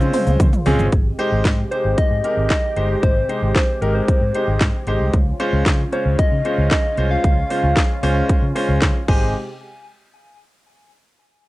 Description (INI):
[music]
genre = dance-pop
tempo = 114 BPM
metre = 4/4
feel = straight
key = Ab major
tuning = A4 = 440 Hz
[part]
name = clear concert grand piano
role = accompaniment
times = 0.0-9.3 s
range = Ab3 to Db5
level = -23 LUFS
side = equal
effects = sidechain pumping
[part]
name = filtered supersaw swell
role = sustained chords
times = 0.0-9.3 s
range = C3 to C5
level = -28 LUFS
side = right 1 dB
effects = sidechain pumping
[part]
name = vintage muted fingered electric bass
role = bass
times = 0.0-9.3 s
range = G1 to Db3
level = -20 LUFS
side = equal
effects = sidechain pumping
[part]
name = house drum kit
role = drums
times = 0.0-9.2 s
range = crash cymbal, handclaps, hi-hat, kick drum, shaker, snare drum, toms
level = -17 LUFS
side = equal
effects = vintage 12-bit sampler grit
[part]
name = soft struck synth lead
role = melody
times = 1.7-9.3 s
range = Bb4 to Ab5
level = -24 LUFS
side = left 1 dB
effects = chorus
[sound]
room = light reverb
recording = none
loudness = -16 LUFS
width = side -18 dB against mid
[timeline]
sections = 0.9-9.3 A section; 9.3-11.5 B section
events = drum fill 0.0-0.9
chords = 0.0 Dbmaj7; 0.9 Abmaj7; 5.1 Dbmaj7; 9.1 Abmaj7; 9.3 N.C.